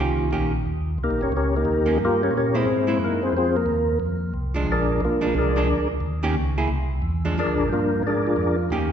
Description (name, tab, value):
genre	jazz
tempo	179 BPM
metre	4/4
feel	swing 63% on 8ths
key	unclear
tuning	A4 = 440 Hz
part	percussive tonewheel organ	melody	0.0-8.9 s	Bb3 to D5	-22 LUFS	left 1 dB	slow rotary speaker, chorus vibrato
part	archtop guitar, miked and amplified	accompaniment	0.0-8.9 s	Eb3 to Ab4	-27 LUFS	right 2 dB	none
part	tonewheel organ	bass	0.0-8.9 s	G1 to Bb2	-25 LUFS	equal	slow rotary speaker
room	wet concert hall reverb, RT60 1.9 s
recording	recorded in a church or concert hall, nothing above 7.8 kHz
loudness	-20 LUFS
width	side -8 dB against mid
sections	0.0-8.7 A section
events	tonewheel organ solo 0.0-8.7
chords	0.0 Eb7; 2.0 Gm7b5; 2.7 C7alt; 3.3 F7(no3); 4.7 Bb7; 6.0 Eb7; 6.7 Caug; 7.4 Bb7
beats	0.32 | 0.65 0.99 1.32 1.66 | 1.99 2.33 2.67 3.00 | 3.34 3.67 4.01 4.34 | 4.68 5.01 5.35 5.69 | 6.02 6.36 6.69 7.03 | 7.37 7.70 8.04 8.37 | 8.71